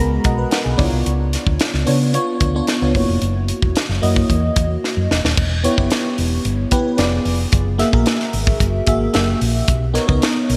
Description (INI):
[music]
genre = polished 1980s jazz-funk pop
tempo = 111 BPM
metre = 4/4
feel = straight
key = unclear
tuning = A4 = 439 Hz
[part]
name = FM electric piano with soft pad layer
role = accompaniment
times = 0.0-10.6 s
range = G#3 to B5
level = -22 LUFS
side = equal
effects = analog chorus
[part]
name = hollow-body short-scale fingered electric bass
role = bass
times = 0.0-10.6 s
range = D#1 to C#3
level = -22 LUFS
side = equal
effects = none
[part]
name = crisp fusion drum kit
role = drums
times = 0.2-10.6 s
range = crash cymbal, hi-hat, kick drum, snare drum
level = -22 LUFS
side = equal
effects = none
[sound]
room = moderate lush hall reverb, RT60 2.9 s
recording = bright 1980s-style digital production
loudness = -18 LUFS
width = mono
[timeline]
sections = 0.0-5.4 A section; 5.4-10.6 B section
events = FM electric piano fill 0.0-1.1; drum fill 4.8-5.4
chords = 0.0 G#m9; 0.8 C#7b9; 2.9 F#7; 5.4 Em6; 7.0 Fdim7; 7.5 F#9; 9.1 F#7b9; 9.7 Bmaj9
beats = 0.52 | 1.06 1.60 2.14 2.68 | 3.22 3.76 4.30 4.83 | 5.37 5.91 6.45 6.99 | 7.53 8.07 8.61 9.14 | 9.68 10.22